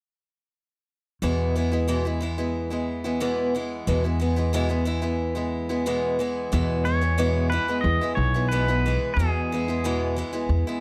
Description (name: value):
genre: folk rock and heartland rock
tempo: 90 BPM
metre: 4/4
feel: straight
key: E major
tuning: A4 = 441 Hz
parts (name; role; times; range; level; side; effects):
- picked acoustic archtop guitar; accompaniment; 1.2-10.8 s; E2 to E4; -28 LUFS; equal; none
- upright bass; bass; 1.2-10.6 s; B1 to E2; -28 LUFS; equal; none
- pedal steel guitar; melody; 6.8-10.1 s; G#4 to D#5; -29 LUFS; equal; none
room: light reverb, small room ambience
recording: none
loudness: -25 LUFS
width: mono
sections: 1.2-6.5 A section; 6.5-10.8 B section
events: none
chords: 1.2 E